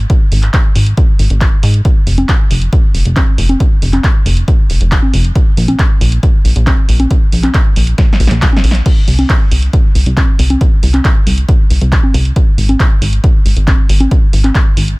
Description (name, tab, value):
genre	uplifting trance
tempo	137 BPM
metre	4/4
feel	straight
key	unclear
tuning	A4 = 440 Hz
part	plucky analog bass	bass	0.0-15.0 s	F1 to Ab2	-11 LUFS	equal	sidechain pumping
part	electronic kick drum	drums	0.1-14.6 s	none	-11 LUFS	equal	none
part	punchy analog drum machine	drums	0.1-15.0 s	congas, crash cymbal, handclaps, hi-hat, snare drum	-18 LUFS	equal	sidechain pumping on hats, sidechain pumping on perc, sidechain pumping on cymbals
room	little or no reverb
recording	none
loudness	-8 LUFS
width	side -24 dB against mid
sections	0.0-15.0 A section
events	drum fill 8.0-8.9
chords	none